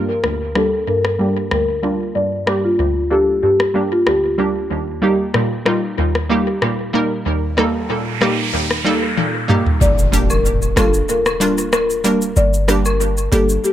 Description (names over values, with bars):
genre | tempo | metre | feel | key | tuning
dancehall | 94 BPM | 4/4 | straight | G minor | A4 = 439 Hz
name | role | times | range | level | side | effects
analog pluck | accompaniment | 0.0-13.5 s | D2 to Bb4 | -18 LUFS | right 1 dB | chorus, low-pass filter, analog delay
marimba with soft mallets | melody | 0.1-4.5, 9.8-13.7 s | F4 to D5 | -18 LUFS | left 1 dB | low-pass filter, analog delay
island pop drum kit | drums | 0.2-13.7 s | hi-hat, rim click, shaker, toms | -22 LUFS | left 1 dB | analog delay
noise sweep and impact | sound effects | 7.7-12.4 s | none | -23 LUFS | equal | none
warm 808-style bass | bass | 9.8-13.6 s | G1 | -17 LUFS | equal | none
cabasa and woodblock | percussion | 10.1-13.5 s | none | -29 LUFS | equal | analog delay
room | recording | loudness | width
light reverb, digital ambience | echo-heavy mix | -15 LUFS | side -11 dB against mid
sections
0.0-9.8 A section; 9.8-13.7 B section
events
filter sweep 0.0-9.8; noise sweep 7.7-9.8; drum fill 9.2-9.8; kick muted 9.8-13.7; impact 9.8-12.4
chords
0.0 Gm; 4.7 Eb; 9.8 Gm